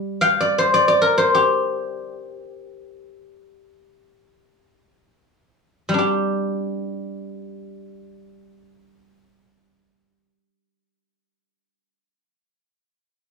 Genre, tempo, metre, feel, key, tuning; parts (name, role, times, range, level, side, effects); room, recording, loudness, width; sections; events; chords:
chinese traditional, Chinese solo plucked strings; free time; G yu mode; A4 = 441 Hz
guzheng; solo; 0.0-12.0 s; G3 to Bb5; -19 LUFS; left 1 dB
moderate small room reverb, RT60 0.5 s; band playing live in one room, studio ambience; -17 LUFS; side -4 dB against mid
0.0-6.0 A section; 6.0-11.2 B section
slowing down 0.9-6.0